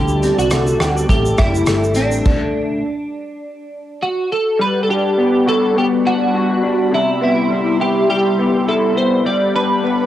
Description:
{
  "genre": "indie pop, bedroom pop",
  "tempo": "103 BPM",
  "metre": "4/4",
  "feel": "swing 55% on 16ths",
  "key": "G major",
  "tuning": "A4 = 440 Hz",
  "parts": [
    { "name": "twelve-string electric guitar", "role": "melody", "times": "0.0-10.1 s", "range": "D4 to D5", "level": "-18 LUFS", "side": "right 1 dB", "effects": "analog chorus, cassette tape, tape echo, plate reverb" },
    { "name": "electric guitar through a small old amp", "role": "accompaniment", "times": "0.0-10.1 s", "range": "C3 to G4", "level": "-18 LUFS", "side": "left 2 dB", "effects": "ensemble chorus, warbly pitch drift, cassette tape, plate reverb" },
    { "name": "phased analog pad", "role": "sustained chords", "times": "0.0-10.1 s", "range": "G3 to D6", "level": "-25 LUFS", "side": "right 1 dB", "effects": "phaser, chorus, cassette tape, plate reverb" },
    { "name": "hollow-body short-scale picked electric bass", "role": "bass", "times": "0.0-2.2 s", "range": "F#1 to D2", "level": "-20 LUFS", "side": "equal", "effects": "transformer saturation" },
    { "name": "loose indie drum kit", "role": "drums", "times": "0.1-2.4 s", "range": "crash cymbal, hi-hat, kick drum, rim click, shaker", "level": "-19 LUFS", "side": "equal", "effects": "cassette tape" }
  ],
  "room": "moderate booth ambience, RT60 0.2 s",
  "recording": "home recording on cassette",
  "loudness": "-14 LUFS",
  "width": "side -12 dB against mid",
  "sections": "0.0-4.6 A section; 4.6-10.1 B section",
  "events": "stop 2.3-4.6",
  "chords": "0.0 D7sus4; 2.3 N.C.; 4.6 Gmaj7; 6.9 Cmaj7; 9.3 Gmaj7"
}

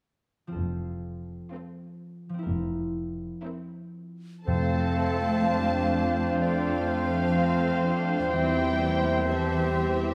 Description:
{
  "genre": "classical, slow romantic movement for symphony orchestra",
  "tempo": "62 BPM",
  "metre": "4/4",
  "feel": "rubato",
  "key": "F major",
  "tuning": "A4 = 436 Hz",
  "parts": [
    { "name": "concert harp", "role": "arpeggios", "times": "0.5-10.1 s", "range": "E3 to F5", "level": "-38 LUFS", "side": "equal", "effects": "none" },
    { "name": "muted studio cello section", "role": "bass", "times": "0.6-10.1 s", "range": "F2 to A3", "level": "-34 LUFS", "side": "equal", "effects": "none" },
    { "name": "muted studio double bass section", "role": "bass", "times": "0.6-10.1 s", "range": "F1 to F2", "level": "-35 LUFS", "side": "equal", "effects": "none" },
    { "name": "muted studio violin section", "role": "melody", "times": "1.5-10.1 s", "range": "A4 to A5", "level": "-38 LUFS", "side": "equal", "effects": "none" },
    { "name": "muted studio violin section", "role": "second line", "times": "1.5-10.1 s", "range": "A3 to C5", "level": "-40 LUFS", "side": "equal", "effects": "none" },
    { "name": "muted studio viola section", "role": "accompaniment", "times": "1.5-10.1 s", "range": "F3 to D4", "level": "-36 LUFS", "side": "equal", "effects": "none" },
    { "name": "clear clarinet", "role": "second line", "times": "4.5-10.1 s", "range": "G4 to D5", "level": "-35 LUFS", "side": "equal", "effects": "none" },
    { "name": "mellow hollow small flute group", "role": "second line", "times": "4.5-10.1 s", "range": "C5 to F5", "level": "-35 LUFS", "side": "equal", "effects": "none" },
    { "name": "warm oboe", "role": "second line", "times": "4.5-10.1 s", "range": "C5", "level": "-37 LUFS", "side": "equal", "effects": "none" },
    { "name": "mellow bassoon", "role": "accompaniment", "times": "4.5-10.1 s", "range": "C4", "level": "-37 LUFS", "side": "equal", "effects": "none" },
    { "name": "mellow French horn section", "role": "sustained chords", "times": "4.5-10.1 s", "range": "F3 to C4", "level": "-36 LUFS", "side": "equal", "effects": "none" },
    { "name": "timpani", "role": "percussion", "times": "4.5-5.9 s", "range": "F2", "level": "-35 LUFS", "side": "equal", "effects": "none" }
  ],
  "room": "wet recital hall reverb, RT60 1.6 s",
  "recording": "none",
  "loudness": "-26 LUFS",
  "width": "mono",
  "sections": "0.6-4.5 A section; 4.5-10.1 B section",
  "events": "none",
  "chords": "0.6 F; 2.5 C7/F; 4.5 F; 8.3 C/E"
}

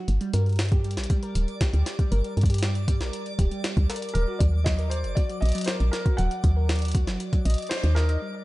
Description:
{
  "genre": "IDM",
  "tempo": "118 BPM",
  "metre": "4/4",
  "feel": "straight",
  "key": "unclear",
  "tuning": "A4 = 441 Hz",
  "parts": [
    { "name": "harp-like synth pluck", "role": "arpeggios", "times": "0.0-8.3 s", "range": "Gb3 to Eb5", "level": "-33 LUFS", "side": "equal", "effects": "chorus, digital delay" },
    { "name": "woody FM bass", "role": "bass", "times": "0.1-8.2 s", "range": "D1 to G2", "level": "-23 LUFS", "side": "equal", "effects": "tube saturation" },
    { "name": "jungle sampler-style drum kit", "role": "drums", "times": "0.1-8.2 s", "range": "hi-hat, snare drum", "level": "-33 LUFS", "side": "equal", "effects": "low-pass filter on hats, low-pass filter on snare" },
    { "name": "twinkling granular texture", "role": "texture", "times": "0.7-8.4 s", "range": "D5 to F#5", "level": "-40 LUFS", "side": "right 1 dB", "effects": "built-in reverb, sidechain pumping" },
    { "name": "electronic kick drum", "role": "drums", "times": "0.7-7.4 s", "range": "none", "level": "-23 LUFS", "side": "equal", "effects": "overdrive" },
    { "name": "felt-muted upright piano", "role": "melody", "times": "4.1-8.4 s", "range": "Bb4 to Gb5", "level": "-33 LUFS", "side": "equal", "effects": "digital delay" }
  ],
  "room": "little or no reverb",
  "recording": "nothing above 11.0 kHz",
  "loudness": "-22 LUFS",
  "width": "side -18 dB against mid",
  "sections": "0.0-8.2 A section",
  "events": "kick drops out 7.7-8.2; band accent 7.7",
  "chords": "0.1 Gm; 4.2 Ebm"
}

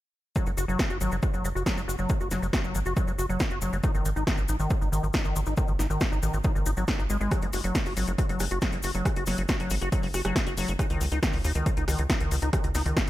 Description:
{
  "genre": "uplifting trance",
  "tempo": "138 BPM",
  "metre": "4/4",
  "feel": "straight",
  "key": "unclear",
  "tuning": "A4 = 438 Hz",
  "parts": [
    { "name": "liquid acid bass", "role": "arpeggios", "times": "0.4-13.1 s", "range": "D#3 to F#4", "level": "-32 LUFS", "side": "left 1 dB", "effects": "chorus, vintage 12-bit sampler grit, sidechain pumping, digital delay" },
    { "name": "electronic kick drum", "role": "drums", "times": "0.4-13.1 s", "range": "none", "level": "-28 LUFS", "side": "equal", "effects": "overdrive" },
    { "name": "cabasa", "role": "percussion", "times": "0.4-13.1 s", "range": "none", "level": "-40 LUFS", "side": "left 5 dB", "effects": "none" },
    { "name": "tight sequencer bass", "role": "bass", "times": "0.5-13.1 s", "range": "F#1 to D#2", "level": "-29 LUFS", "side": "equal", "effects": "sidechain pumping" },
    { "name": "punchy analog drum machine", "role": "drums", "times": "0.8-13.1 s", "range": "hi-hat, rim click, snare drum", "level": "-32 LUFS", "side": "equal", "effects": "sidechain pumping on hats" }
  ],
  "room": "digital ambience",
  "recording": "none",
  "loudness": "-24 LUFS",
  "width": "side -15 dB against mid",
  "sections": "0.4-13.1 A section",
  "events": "none",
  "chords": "0.4 N.C.; 3.8 G#5; 7.3 N.C.; 10.8 C#sus2"
}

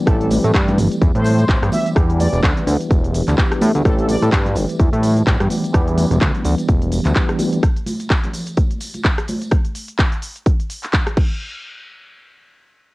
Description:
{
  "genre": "filtered disco house",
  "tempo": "127 BPM",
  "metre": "4/4",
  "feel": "swing 57% on 16ths",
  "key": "unclear",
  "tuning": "A4 = 440 Hz",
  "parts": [
    { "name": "tine electric piano", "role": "accompaniment", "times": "0.0-7.6 s", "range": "E3 to G4", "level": "-22 LUFS", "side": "equal", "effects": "overdrive, fast stereo tremolo, phaser, sidechain pumping" },
    { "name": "analog synth brass", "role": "melody", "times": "0.1-4.2 s", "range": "A4 to E5", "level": "-25 LUFS", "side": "equal", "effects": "chorus, sidechain pumping, cassette tape" },
    { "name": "fat analog bass", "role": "bass", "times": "0.1-7.1 s", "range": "E1 to A2", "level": "-17 LUFS", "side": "equal", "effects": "tube saturation, sidechain pumping" },
    { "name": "electronic kick drum", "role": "drums", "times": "0.1-11.3 s", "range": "none", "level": "-16 LUFS", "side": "equal", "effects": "cassette tape" },
    { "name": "house drum kit", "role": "drums", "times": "0.1-11.3 s", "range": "crash cymbal, handclaps, hi-hat, rim click, shaker", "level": "-25 LUFS", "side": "equal", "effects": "sidechain pumping on perc, cassette tape, sidechain pumping on hats, sidechain pumping on cymbals" },
    { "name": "tambourine and congas", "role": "percussion", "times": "0.1-9.5 s", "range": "none", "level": "-28 LUFS", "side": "right 1 dB", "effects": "sidechain pumping on perc" }
  ],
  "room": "light reverb",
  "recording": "home recording on cassette",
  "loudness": "-15 LUFS",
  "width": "side -21 dB against mid",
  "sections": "0.0-11.4 A section; 11.4-12.9 B section",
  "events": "drop 0.0-11.4",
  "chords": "0.1 Am7; 1.7 Em7; 3.9 Am7; 5.5 Em7; 7.6 N.C."
}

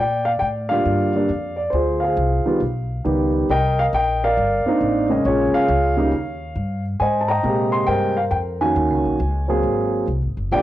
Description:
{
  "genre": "jazz",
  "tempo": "137 BPM",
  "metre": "4/4",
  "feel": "swing 66% on 8ths",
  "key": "unclear",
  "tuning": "A4 = 438 Hz",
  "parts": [
    { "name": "dark baby grand piano", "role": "melody", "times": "0.0-10.6 s", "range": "C3 to C6", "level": "-18 LUFS", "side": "equal", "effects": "cassette tape, plate reverb" },
    { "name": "upright bass", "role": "bass", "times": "0.0-10.6 s", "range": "Gb1 to Bb2", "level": "-24 LUFS", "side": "equal", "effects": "none" }
  ],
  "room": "moderate studio reverb, RT60 0.5 s",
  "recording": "home recording on cassette",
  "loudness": "-17 LUFS",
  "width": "side -14 dB against mid",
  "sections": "0.0-10.6 A section",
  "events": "none",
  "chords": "0.0 Bb6; 1.7 Dm7b5; 2.6 Gaug7; 3.5 Cm9; 5.2 Bbm7; 6.1 Eb7; 7.0 Abmaj9; 8.8 Ebm7; 9.6 Ab9"
}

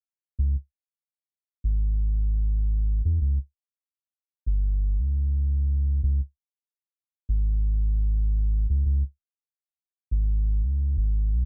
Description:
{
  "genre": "trip hop",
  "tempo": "85 BPM",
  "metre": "4/4",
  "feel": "swing 55% on 16ths",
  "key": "unclear",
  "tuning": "A4 = 444 Hz",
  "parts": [
    { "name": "round analog bass", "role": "bass", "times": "0.4-11.5 s", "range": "G1 to E2", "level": "-26 LUFS", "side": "equal", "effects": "none" }
  ],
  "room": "little or no reverb",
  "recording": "dry, gritty hardware recording, low-pass filter",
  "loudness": "-26 LUFS",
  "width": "mono",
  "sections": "0.4-11.5 A section",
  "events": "filter sweep 0.4-11.5",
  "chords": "none"
}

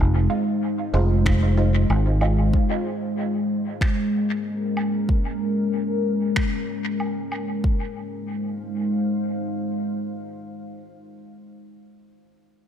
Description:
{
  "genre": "ambient dub",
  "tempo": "94 BPM",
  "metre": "4/4",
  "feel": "swing 56% on 16ths",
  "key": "F minor",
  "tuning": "A4 = 441 Hz",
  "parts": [
    { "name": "deep dark ambient pad", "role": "sustained chords", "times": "0.0-11.0 s", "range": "Ab3 to F5", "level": "-24 LUFS", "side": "left 1 dB", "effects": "chorus, built-in reverb" },
    { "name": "fingered electric bass", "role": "bass", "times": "0.0-2.5 s", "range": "F1 to Ab1", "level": "-19 LUFS", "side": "equal", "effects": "tube saturation" },
    { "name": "filtered dub chord stab", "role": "stabs", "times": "0.3-2.4 s", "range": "Ab3 to F4", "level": "-30 LUFS", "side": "right 2 dB", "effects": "phaser, analog chorus, cassette tape, dub echo" },
    { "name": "electronic kick drum", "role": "drums", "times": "1.3-7.8 s", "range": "none", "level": "-22 LUFS", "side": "equal", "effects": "none" },
    { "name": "finger snaps and woodblock", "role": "drums", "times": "1.3-7.5 s", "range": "none", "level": "-33 LUFS", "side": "right 1 dB", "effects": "dub echo" }
  ],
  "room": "light reverb, small room reverb",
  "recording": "none",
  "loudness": "-21 LUFS",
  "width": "side -9 dB against mid",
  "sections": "0.0-7.6 A section; 7.6-10.2 B section",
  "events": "none",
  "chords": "0.0 Fm7; 2.5 Bbm7; 7.6 Fm7"
}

